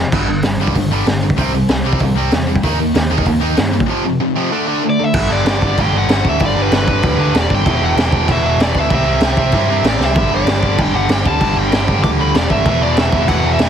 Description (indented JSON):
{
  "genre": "punk rock",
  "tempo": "191 BPM",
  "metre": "4/4",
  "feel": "straight",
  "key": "G major from 5.1 s",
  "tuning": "A4 = 441 Hz",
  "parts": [
    { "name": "tight distorted guitar", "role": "riff", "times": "0.0-13.7 s", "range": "E2 to Eb4", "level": "-20 LUFS", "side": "left 15 dB", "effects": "distortion" },
    { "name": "overdriven picked electric bass", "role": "bass", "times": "0.0-13.7 s", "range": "E1 to G2", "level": "-19 LUFS", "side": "equal", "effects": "none" },
    { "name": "overdriven electric guitar", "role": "riff", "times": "0.1-13.7 s", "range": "E2 to Eb4", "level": "-19 LUFS", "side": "right 16 dB", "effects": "none" },
    { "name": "raw garage drum kit", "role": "drums", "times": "0.1-13.7 s", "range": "crash cymbal, hi-hat, kick drum, snare drum", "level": "-17 LUFS", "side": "equal", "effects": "none" },
    { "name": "biting overdriven guitar", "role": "melody", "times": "4.9-13.7 s", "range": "B4 to D6", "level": "-20 LUFS", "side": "left 1 dB", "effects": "none" }
  ],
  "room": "little or no reverb",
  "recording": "heavily compressed radio sound",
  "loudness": "-12 LUFS",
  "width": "side -8 dB against mid",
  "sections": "0.0-5.1 A section; 5.1-13.7 B section",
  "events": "drum fill 10.0",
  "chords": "0.1 G5; 1.4 C; 2.6 Eb; 3.9 F5; 4.5 D5; 5.1 G; 7.7 Em; 8.9 C; 10.2 G5; 12.7 E5",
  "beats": "| 0.12 0.43 0.74 1.06 | 1.37 1.69 2.00 2.32 | 2.63 2.95 3.26 3.58 | 3.89 4.21 4.52 4.83 | 5.15 5.46 5.78 6.09 | 6.40 6.72 7.03 7.34 | 7.66 7.97 8.28 8.60 | 8.91 9.22 9.54 9.85 | 10.16 10.47 10.79 11.10 | 11.41 11.72 12.04 12.35 | 12.66 12.97 13.29 13.60"
}